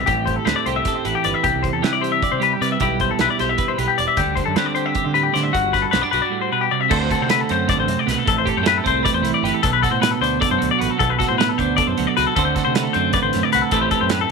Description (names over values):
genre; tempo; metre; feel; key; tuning
math rock and midwest emo; 308 BPM (eighths); 7/8; straight; unclear; A4 = 439 Hz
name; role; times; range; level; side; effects
twelve-string electric guitar; accompaniment; 0.0-14.3 s; G2 to D5; -22 LUFS; right 14 dB; none
semi-hollow electric guitar; arpeggios; 0.0-14.3 s; F#4 to E5; -19 LUFS; left 15 dB; none
growling fingered electric bass; bass; 0.0-14.2 s; E1 to D3; -26 LUFS; equal; overdrive
loose indie drum kit; drums; 0.1-14.2 s; crash cymbal, hi-hat, kick drum, snare drum; -25 LUFS; right 3 dB; none
room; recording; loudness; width
small room ambience; 1960s-style stereo with parts hard left and right; -16 LUFS; side -4 dB against mid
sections
0.0-6.9 A section; 6.9-14.3 B section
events
none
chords
0.1 Am9; 1.4 Cmaj9; 2.8 G6/B; 4.2 D7sus4; 5.5 Gmaj7; 6.9 D7; 8.3 Am9; 9.6 Bm7; 12.4 D7; 13.7 Am9